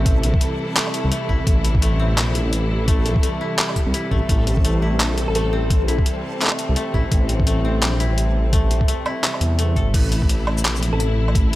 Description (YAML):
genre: half-time drum and bass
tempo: 170 BPM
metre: 4/4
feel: swing 59% on 16ths, half-time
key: A phrygian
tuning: A4 = 440 Hz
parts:
  - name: rich symphonic string section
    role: sustained chords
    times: 0.0-11.6 s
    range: C3 to E4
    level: -27 LUFS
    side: equal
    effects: vintage 12-bit sampler grit, sidechain pumping
  - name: koto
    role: arpeggios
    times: 0.0-11.6 s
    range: A3 to A4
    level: -29 LUFS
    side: left 1 dB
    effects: tape echo
  - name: dark detuned saw bass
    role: bass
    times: 0.0-11.6 s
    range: G1 to E2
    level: -20 LUFS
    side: equal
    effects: none
  - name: backwards swelling texture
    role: texture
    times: 0.0-9.9 s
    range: A4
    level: -32 LUFS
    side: left 2 dB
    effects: built-in reverb
  - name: boom bap sampler-style drum kit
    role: drums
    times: 0.1-11.6 s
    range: crash cymbal, handclaps, hi-hat, shaker, woodblock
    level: -23 LUFS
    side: equal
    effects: none
  - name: electronic kick drum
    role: drums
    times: 0.1-11.4 s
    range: none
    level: -19 LUFS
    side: equal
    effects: none
  - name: thumb-piano-like synth pluck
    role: melody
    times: 5.3-5.4, 10.9-11.1 s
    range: A4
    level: -30 LUFS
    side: left 2 dB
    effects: lush chorus, dub echo
room: little or no reverb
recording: none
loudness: -17 LUFS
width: side -16 dB against mid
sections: 0.0-9.9 A section; 9.9-11.6 A section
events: drop 0.0-9.9, 9.9-11.6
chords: 0.0 Am